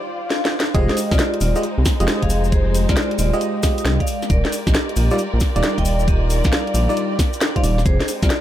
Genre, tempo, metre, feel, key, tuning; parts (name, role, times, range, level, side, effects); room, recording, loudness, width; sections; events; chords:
UK garage, two-step garage; 135 BPM; 4/4; swing 66% on 16ths; F dorian; A4 = 440 Hz
warm studio violin section; sustained chords; 0.0-8.4 s; Ab3 to D5; -31 LUFS; left 1 dB; vintage 12-bit sampler grit, sidechain pumping
swell; sound effects; 0.0-0.7 s; -28 LUFS; left 4 dB
house drum kit; drums; 0.3-8.4 s; hi-hat, snare drum; -23 LUFS; equal
vibraphone with medium hard mallets; melody; 0.7-8.4 s; F4 to G5; -27 LUFS; equal; tape echo
FM electric piano; stabs; 0.7-7.8 s; G3 to Eb5; -24 LUFS; right 1 dB; chorus, digital delay
rubbery square bass; bass; 0.7-8.3 s; Eb1 to C2; -19 LUFS; equal
electronic kick drum; drums; 0.7-8.3 s; -19 LUFS; equal; overdrive
cabasa; percussion; 0.7-8.4 s; -33 LUFS; left 3 dB
deep dark ambient pad; texture; 1.5-8.4 s; Ab3 to D5; -32 LUFS; left 1 dB
digital ambience; -16 LUFS; side -12 dB against mid
0.7-8.4 A section
break 0.0-0.7; swell 0.0-0.7; drum fill 0.3-0.7; drop 0.7-8.4
0.0 Ebmaj9 (rootless); 0.7 Fm9; 4.1 Ebmaj9; 7.9 Fm9